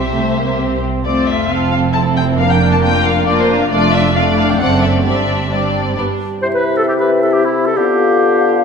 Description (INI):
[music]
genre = quick classical-period movement for symphony orchestra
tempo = 134 BPM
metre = 3/4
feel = straight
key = C major from 3.7 s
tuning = A4 = 440 Hz
[part]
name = muted chamber violin section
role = melody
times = 0.0-6.0 s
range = C5 to A5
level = -19 LUFS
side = left 5 dB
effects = none
[part]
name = muted chamber violin section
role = second line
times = 0.0-6.2 s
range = D4 to D5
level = -20 LUFS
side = left 1 dB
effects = none
[part]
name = muted studio viola section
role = accompaniment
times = 0.0-6.2 s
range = G3 to D4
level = -18 LUFS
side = equal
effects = none
[part]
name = muted chamber double bass section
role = bass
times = 0.0-6.0 s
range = F1 to C2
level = -20 LUFS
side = right 5 dB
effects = none
[part]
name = muted studio cello section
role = bass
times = 0.0-6.1 s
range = F2 to C3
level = -21 LUFS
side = right 3 dB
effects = none
[part]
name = silver concert flute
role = second line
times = 6.4-8.6 s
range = E5 to F5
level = -22 LUFS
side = left 3 dB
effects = none
[part]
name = warm clarinet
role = second line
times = 6.4-8.6 s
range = E4 to C5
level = -16 LUFS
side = left 5 dB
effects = none
[part]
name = warm oboe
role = second line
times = 6.4-8.6 s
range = E4 to C5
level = -19 LUFS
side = right 2 dB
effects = none
[part]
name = mellow bassoon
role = accompaniment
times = 6.4-8.6 s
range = C3 to D3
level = -17 LUFS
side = right 1 dB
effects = none
[part]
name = warm French horn section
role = sustained chords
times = 6.4-8.6 s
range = B3 to F4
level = -18 LUFS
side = left 4 dB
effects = none
[sound]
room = wet concert hall reverb, RT60 1.9 s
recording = minimal, uncompressed stereo recording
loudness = -12 LUFS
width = side -6 dB against mid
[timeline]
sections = 0.0-6.4 A section; 6.4-8.6 B section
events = none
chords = 0.0 C; 1.1 F; 2.4 Bb/F; 3.7 Dm/F; 4.6 D7/F#; 5.1 Gsus4; 6.0 G; 6.4 C; 7.8 G7/D